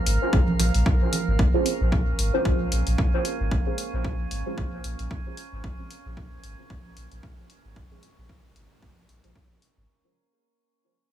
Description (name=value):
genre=dub techno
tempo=113 BPM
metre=4/4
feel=swing 56% on 16ths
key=Bb minor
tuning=A4 = 440 Hz
part: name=drifting glass-harmonics texture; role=texture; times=0.0-9.9 s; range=Bb3 to Bb4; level=-35 LUFS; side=right 4 dB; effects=chorus, built-in reverb, sidechain pumping
part: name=warm sub bass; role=bass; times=0.1-9.9 s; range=Ab1 to Bb1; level=-25 LUFS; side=equal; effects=sidechain pumping
part: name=electronic hi-hat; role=drums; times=0.1-9.7 s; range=none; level=-31 LUFS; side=left 3 dB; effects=overdrive
part: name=electronic kick drum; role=drums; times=0.3-9.5 s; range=none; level=-25 LUFS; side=equal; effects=overdrive
part: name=congas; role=percussion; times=0.5-1.2 s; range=none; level=-30 LUFS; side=right 6 dB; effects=sidechain pumping on perc, dub echo
part: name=deep mellow chord stab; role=stabs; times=1.5-9.4 s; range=Db4 to C5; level=-29 LUFS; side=right 2 dB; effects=chorus, phaser, sidechain pumping, dub echo
room=little or no reverb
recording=small room ambience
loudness=-22 LUFS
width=side -11 dB against mid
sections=0.0-9.9 A section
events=fade-out 0.0-9.9; filter sweep on sub bass 0.0-9.9; filter sweep on synth stab 0.0-9.9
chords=0.0 Bbm7